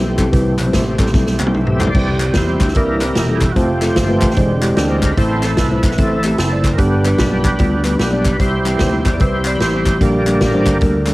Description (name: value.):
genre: uptempo gospel.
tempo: 149 BPM.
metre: 4/4.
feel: swing 63% on 8ths.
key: C major.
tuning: A4 = 436 Hz.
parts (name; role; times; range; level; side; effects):
mellow French horn section; sustained chords; 0.0-11.1 s; E3 to G4; -26 LUFS; left 1 dB; none.
overdriven tonewheel organ; sustained chords; 0.0-11.1 s; D3 to G5; -19 LUFS; right 1 dB; slow rotary speaker, chorus vibrato, cassette tape.
vintage slap bass; bass; 0.0-11.1 s; E1 to E2; -20 LUFS; equal; none.
mellow tine electric piano; accompaniment; 0.2-11.1 s; G2 to D5; -20 LUFS; left 1 dB; medium stereo tremolo, cassette tape.
swinging big-band drum kit; drums; 0.2-11.1 s; crash cymbal, hi-hat, kick drum, snare drum, toms; -18 LUFS; equal; cassette tape.
group handclap; percussion; 0.2-11.1 s; none; -28 LUFS; left 2 dB; none.
room: moderate spring reverb, RT60 1.9 s, small room reverb.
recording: home recording on cassette.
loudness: -13 LUFS.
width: side -19 dB against mid.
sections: 0.0-1.9 A section; 1.9-11.1 B section.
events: drum fill 1.1-1.9; tonewheel organ fill 1.1-1.9; tonewheel organ solo 1.9-11.1.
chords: 0.0 C6; 1.9 C; 2.8 C7; 3.6 F; 4.4 E7alt; 5.2 Am; 6.8 G; 8.4 C; 10.0 Gm.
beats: | 0.33 0.73 1.14 1.54 | 1.95 2.35 2.75 3.16 | 3.56 3.96 4.37 4.77 | 5.17 5.58 5.98 6.38 | 6.79 7.19 7.59 8.00 | 8.40 8.80 9.21 9.61 | 10.01 10.42 10.82.